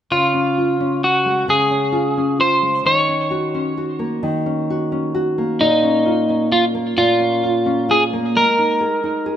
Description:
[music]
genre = pop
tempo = 44 BPM (dotted quarters)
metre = 6/8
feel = straight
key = Db major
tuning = A4 = 441 Hz
[part]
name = electric guitar at the edge of break-up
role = melody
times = 0.1-9.3 s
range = Eb4 to Db5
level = -16 LUFS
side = equal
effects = tape echo
[part]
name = nylon-string guitar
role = accompaniment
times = 0.1-9.4 s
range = Bb2 to Ab4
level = -20 LUFS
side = equal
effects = none
[sound]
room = moderate echo chamber reverb, RT60 1.2 s, small room ambience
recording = none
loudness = -15 LUFS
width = side -10 dB against mid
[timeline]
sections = 0.1-9.4 A section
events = none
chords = 0.1 Db; 2.9 Ebm7; 5.6 Bbm; 8.3 Absus2

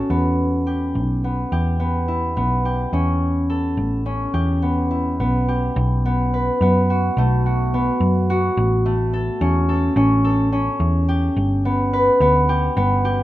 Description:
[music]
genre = contemporary instrumental, chamber music in an uneven meter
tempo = 213 BPM (eighths)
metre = 5/8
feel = straight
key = E dorian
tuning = A4 = 442 Hz
[part]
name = concert harp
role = arpeggios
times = 0.0-13.2 s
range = A3 to B4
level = -20 LUFS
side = equal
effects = none
[part]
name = hollow-body short-scale picked electric bass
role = bass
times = 0.1-13.2 s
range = G1 to F#2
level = -20 LUFS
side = equal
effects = none
[sound]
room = light reverb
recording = none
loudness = -17 LUFS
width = side -15 dB against mid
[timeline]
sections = 0.0-5.8 A section; 5.8-13.2 B section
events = none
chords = 0.1 Em; 2.9 A; 4.3 Em; 5.8 B5; 8.6 A; 11.4 G

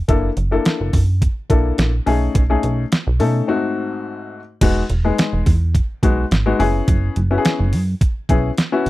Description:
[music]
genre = early-eighties boogie funk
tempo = 106 BPM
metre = 4/4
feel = straight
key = unclear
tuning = A4 = 441 Hz
[part]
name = plucky analog bass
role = bass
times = 0.0-8.9 s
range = E1 to B2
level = -18 LUFS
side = right 1 dB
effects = none
[part]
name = dark baby grand piano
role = accompaniment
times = 0.1-8.9 s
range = G#2 to A4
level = -20 LUFS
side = left 4 dB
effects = none
[part]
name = detuned 8-bit digital drum machine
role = drums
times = 0.1-8.9 s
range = crash cymbal, hi-hat, kick drum, snare drum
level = -18 LUFS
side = right 1 dB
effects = overdrive
[sound]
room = little or no reverb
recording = dry, close 1970s-style studio recording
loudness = -15 LUFS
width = side -17 dB against mid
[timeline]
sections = 0.0-4.6 A section; 4.6-8.9 B section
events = break 3.5-4.6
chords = 0.1 F#7alt; 2.1 B13; 3.5 G#7b9; 4.6 Emaj7; 6.6 F#7sus4

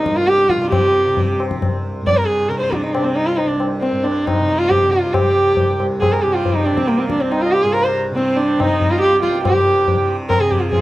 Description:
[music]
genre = indian classical, Hindustani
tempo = 138 BPM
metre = 5/4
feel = straight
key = C raga darbari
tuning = A4 = 440 Hz
[part]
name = dark sarangi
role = melody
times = 0.0-10.8 s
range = Bb3 to D5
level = -16 LUFS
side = equal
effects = none
[part]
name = tanpura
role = drone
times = 0.0-10.8 s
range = C2 to C3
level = -26 LUFS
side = right 2 dB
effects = none
[part]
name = tabla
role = percussion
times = 0.1-10.8 s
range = none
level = -21 LUFS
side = left 2 dB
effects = none
[part]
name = hand-pumped harmonium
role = second line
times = 5.3-10.8 s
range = Bb3 to Bb4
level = -25 LUFS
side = right 6 dB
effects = none
[sound]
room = small room ambience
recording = dry, close 1970s-style studio recording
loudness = -14 LUFS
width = side -16 dB against mid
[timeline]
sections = 0.0-10.8 A section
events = speeding up 0.0-10.8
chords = none

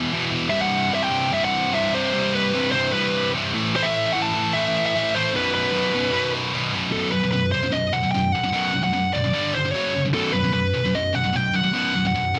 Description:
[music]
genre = metal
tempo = 150 BPM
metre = 4/4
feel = straight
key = unclear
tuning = A4 = 440 Hz
[part]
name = scooped high-gain guitar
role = riff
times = 0.0-12.4 s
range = B1 to A3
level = -24 LUFS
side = equal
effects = distortion
[part]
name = high-gain lead guitar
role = melody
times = 0.5-12.4 s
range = A4 to A5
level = -25 LUFS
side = equal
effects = distortion
[sound]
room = little or no reverb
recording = none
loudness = -22 LUFS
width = mono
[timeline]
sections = 0.0-6.9 A section; 6.9-12.4 B section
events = none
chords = 0.0 E5; 0.5 C5; 3.5 A5; 5.3 B5; 9.3 G5; 9.7 F#5; 10.1 B5

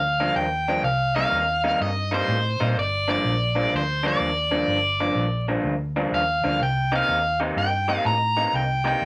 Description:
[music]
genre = electric blues shuffle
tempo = 125 BPM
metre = 4/4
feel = swing 67% on 8ths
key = G minor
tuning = A4 = 440 Hz
[part]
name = overdriven electric guitar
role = melody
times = 0.0-9.1 s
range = C5 to Bb5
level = -25 LUFS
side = equal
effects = none
[part]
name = vintage muted fingered electric bass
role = bass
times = 0.0-9.1 s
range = G1 to Bb2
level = -30 LUFS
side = equal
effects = none
[part]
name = electric guitar through a small old amp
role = riff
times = 0.2-9.1 s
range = G2 to G4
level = -28 LUFS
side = equal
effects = none
[sound]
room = wet studio ambience, RT60 0.5 s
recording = vinyl crackle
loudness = -23 LUFS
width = mono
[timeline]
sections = 0.0-9.1 A section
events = none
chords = 0.0 Gm7; 0.8 Cm7; 2.8 Gm7; 6.6 Cm7

